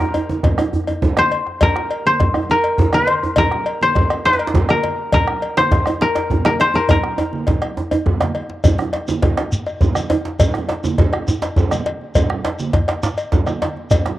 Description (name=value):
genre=west african traditional, West African drum ensemble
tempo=137 BPM (dotted quarters)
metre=12/8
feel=straight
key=unclear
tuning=A4 = 440 Hz
part: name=koto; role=melody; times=0.0-8.7 s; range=Bb4 to C5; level=-17 LUFS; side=left 2 dB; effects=cassette tape
part: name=djembe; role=percussion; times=0.0-14.2 s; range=none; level=-21 LUFS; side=left 1 dB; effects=none
part: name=djembe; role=percussion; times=0.0-14.2 s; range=none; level=-23 LUFS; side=right 3 dB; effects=none
part: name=cowbell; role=percussion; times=0.1-14.0 s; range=none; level=-24 LUFS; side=left 3 dB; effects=none
part: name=congas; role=percussion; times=0.3-14.1 s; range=none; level=-25 LUFS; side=right 4 dB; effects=none
part: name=bombo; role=percussion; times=0.4-14.2 s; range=none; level=-20 LUFS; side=right 1 dB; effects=none
part: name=shekere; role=percussion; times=8.6-14.0 s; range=none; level=-23 LUFS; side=equal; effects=none
room=light reverb, small room ambience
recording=home recording on cassette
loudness=-15 LUFS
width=side -14 dB against mid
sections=0.0-8.6 A section; 8.6-14.2 B section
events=drum fill 0.9-1.6, 6.9-8.6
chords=none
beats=0.29 0.73 1.17 | 1.61 2.05 2.49 2.93 | 3.37 3.81 4.25 4.69 | 5.13 5.57 6.01 6.45 | 6.89 7.33 7.77 8.21 | 8.64 9.08 9.52 9.96 | 10.40 10.84 11.28 11.72 | 12.15 12.59 13.03 13.47 | 13.91